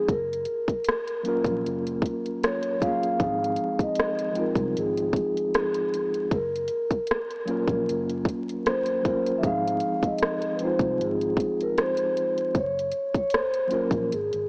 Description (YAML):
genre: lo-fi hip hop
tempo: 77 BPM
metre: 4/4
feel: swing 55% on 16ths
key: unclear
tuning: A4 = 440 Hz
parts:
  - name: vibraphone with soft mallets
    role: melody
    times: 0.0-14.5 s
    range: Ab4 to F5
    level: -26 LUFS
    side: equal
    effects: low-pass filter, cassette tape
  - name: mellow tine electric piano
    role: accompaniment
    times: 0.0-14.1 s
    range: F3 to Bb4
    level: -28 LUFS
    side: equal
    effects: medium stereo tremolo, cassette tape, low-pass filter
  - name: vintage muted fingered electric bass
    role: bass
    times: 0.1-14.5 s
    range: Gb1 to C2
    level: -36 LUFS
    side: equal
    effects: transformer saturation
  - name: garage drum kit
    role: drums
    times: 0.1-14.5 s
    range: hi-hat, kick drum, rim click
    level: -27 LUFS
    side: equal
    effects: cassette tape
room: light reverb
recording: home recording on cassette, vinyl crackle, small speaker sound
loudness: -23 LUFS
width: side -36 dB against mid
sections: 0.0-14.5 A section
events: none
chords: 0.1 Gbmaj7; 3.2 Ab6; 6.3 Gbmaj7; 9.4 Ab6; 12.5 Gbmaj7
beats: | 0.08 0.86 1.64 2.42 | 3.20 3.98 4.76 5.54 | 6.32 7.09 7.87 8.65 | 9.43 10.21 10.99 11.77 | 12.55 13.33 14.11